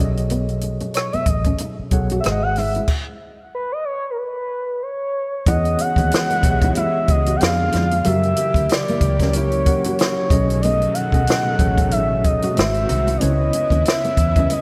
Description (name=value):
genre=R&B, neo-soul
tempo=93 BPM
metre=4/4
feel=swing 56% on 16ths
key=E major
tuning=A4 = 440 Hz
part: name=gliding portamento lead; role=melody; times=0.0-14.6 s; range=A#4 to G5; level=-25 LUFS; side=equal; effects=chorus
part: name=nylon-string guitar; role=second line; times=0.0-14.6 s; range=A#3 to F#4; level=-31 LUFS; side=equal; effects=none
part: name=mellow tine electric piano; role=accompaniment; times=0.0-14.6 s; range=B2 to F#5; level=-26 LUFS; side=equal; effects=none
part: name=vintage muted fingered electric bass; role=bass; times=0.0-14.4 s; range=G#1 to F#2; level=-24 LUFS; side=equal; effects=none
part: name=compact cocktail drum kit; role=drums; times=0.2-14.6 s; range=crash cymbal, hi-hat, kick drum, rim click, snare drum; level=-22 LUFS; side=equal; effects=none
part: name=lush unison pad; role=sustained chords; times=5.4-14.6 s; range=C#3 to G4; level=-32 LUFS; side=equal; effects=chorus
room=moderate scoring stage reverb, RT60 2.1 s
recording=none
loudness=-19 LUFS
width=mono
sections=0.0-5.5 A section; 5.5-14.6 B section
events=stop 2.9-5.5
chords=0.0 B13; 2.2 G#7b13; 2.9 N.C.; 5.5 Emaj13; 7.4 Fdim7; 8.0 F#7b9; 10.3 B13; 12.6 G#7b13; 13.2 C#m9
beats=| 0.30 0.95 1.59 2.24 | 2.88 3.53 4.17 4.82 | 5.46 6.11 6.75 7.40 | 8.04 8.69 9.34 9.98 | 10.63 11.27 11.92 12.56 | 13.21 13.85 14.50